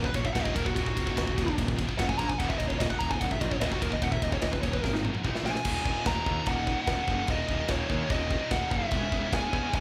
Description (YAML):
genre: heavy metal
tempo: 147 BPM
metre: 4/4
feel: straight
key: Eb phrygian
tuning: A4 = 440 Hz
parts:
  - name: high-gain lead guitar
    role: melody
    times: 0.0-9.8 s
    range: Eb4 to Bb5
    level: -34 LUFS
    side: equal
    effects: distortion
  - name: heavy high-gain guitar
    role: riff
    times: 0.0-9.8 s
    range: Eb2 to Db4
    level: -40 LUFS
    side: equal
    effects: none
  - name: high-gain distorted guitar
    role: riff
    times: 0.0-9.8 s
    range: Eb2 to Db4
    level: -40 LUFS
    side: equal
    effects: distortion
  - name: scooped high-gain guitar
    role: riff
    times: 0.0-9.8 s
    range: Eb2 to Eb4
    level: -39 LUFS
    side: equal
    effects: distortion
  - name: fuzz picked electric bass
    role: bass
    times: 0.0-9.8 s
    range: Eb1 to Fb2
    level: -35 LUFS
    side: equal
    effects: overdrive
  - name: tight metal drum kit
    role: drums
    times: 0.0-9.8 s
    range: crash cymbal, kick drum, ride cymbal, snare drum, toms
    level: -34 LUFS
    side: equal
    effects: none
room: light reverb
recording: band playing live in one room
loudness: -29 LUFS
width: mono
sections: 0.0-5.7 A section; 5.7-9.8 B section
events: lead electric guitar solo 0.0-5.7; drum fill 4.8-5.7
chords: 0.0 Ebm; 2.0 Gb5; 2.2 Bb5; 2.4 Ebm; 5.2 A5; 5.5 Bb5; 5.7 Ebm; 8.9 Dbm/Fb